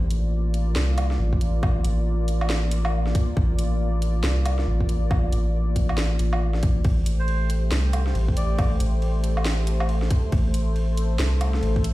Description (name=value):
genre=deep dubstep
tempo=138 BPM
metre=4/4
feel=swing 61% on 16ths, half-time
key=unclear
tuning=A4 = 440 Hz
part: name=dark analog pad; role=sustained chords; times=0.0-11.9 s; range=A3 to D5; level=-31 LUFS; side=equal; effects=chorus
part: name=soft dub sub bass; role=bass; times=0.0-11.9 s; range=A1 to C2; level=-22 LUFS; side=equal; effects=none
part: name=garage drum kit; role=drums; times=0.1-11.9 s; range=hi-hat, ride cymbal, snare drum, woodblock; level=-31 LUFS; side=right 1 dB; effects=overdrive
part: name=electronic kick drum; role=drums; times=1.3-11.8 s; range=none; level=-22 LUFS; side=equal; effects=overdrive
part: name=melodica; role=melody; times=7.2-8.7 s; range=C5 to D5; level=-35 LUFS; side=right 2 dB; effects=dub echo
room=digital ambience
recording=played on a big sound system in a bare room, stone room reverb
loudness=-20 LUFS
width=side -17 dB against mid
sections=0.0-11.9 A section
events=none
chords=0.0 Bb/A; 6.8 Am7